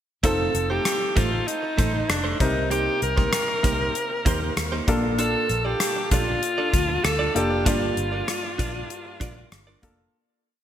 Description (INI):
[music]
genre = 1980s-style pop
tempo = 97 BPM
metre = 4/4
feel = straight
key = F mixolydian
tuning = A4 = 443 Hz
[part]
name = bright alto saxophone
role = melody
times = 0.2-9.5 s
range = D4 to Bb4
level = -25 LUFS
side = equal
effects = shimmer reverb
[part]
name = clear concert grand piano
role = accompaniment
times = 0.2-10.2 s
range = G2 to Bb4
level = -29 LUFS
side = left 1 dB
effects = shimmer reverb
[part]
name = direct-recorded clean electric guitar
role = riff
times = 0.2-10.0 s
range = A3 to D5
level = -31 LUFS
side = right 4 dB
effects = lush chorus, shimmer reverb
[part]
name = vintage muted fingered electric bass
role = bass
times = 0.2-10.1 s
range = F1 to Eb2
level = -29 LUFS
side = equal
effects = none
[part]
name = gated 80s drum kit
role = drums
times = 0.2-10.0 s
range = hi-hat, kick drum, rim click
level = -25 LUFS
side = equal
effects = gated reverb
[sound]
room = moderate lush hall reverb, RT60 2.0 s, small room ambience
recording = bright 1980s-style digital production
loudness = -21 LUFS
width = side -10 dB against mid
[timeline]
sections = 0.2-10.1 verse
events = fade-out 7.7-10.1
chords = 0.2 F7; 2.4 Cm7; 4.9 Bbmaj7; 7.7 Gm7